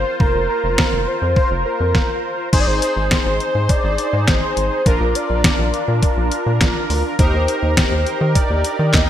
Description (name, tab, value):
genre	synth-pop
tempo	103 BPM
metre	4/4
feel	straight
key	unclear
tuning	A4 = 440 Hz
part	fat analog lead	melody	0.0-9.1 s	Bb4 to Eb5	-22 LUFS	equal	ping-pong delay
part	analog synth brass	accompaniment	0.0-9.1 s	D4 to C5	-22 LUFS	equal	chorus
part	rubbery square bass	bass	0.0-9.1 s	F1 to Eb3	-19 LUFS	equal	none
part	detuned 8-bit digital drum machine	drums	0.2-9.1 s	crash cymbal, handclaps, hi-hat, kick drum, snare drum	-17 LUFS	equal	overdrive, gated reverb
room	moderate lush hall reverb, RT60 1.7 s, digital ambience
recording	bright 1980s-style digital production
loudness	-15 LUFS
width	side -10 dB against mid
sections	0.0-2.5 A section; 2.5-9.1 B section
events	stop 1.9-2.5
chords	0.0 Fsus4; 2.5 Ab; 4.9 Bb; 7.2 Eb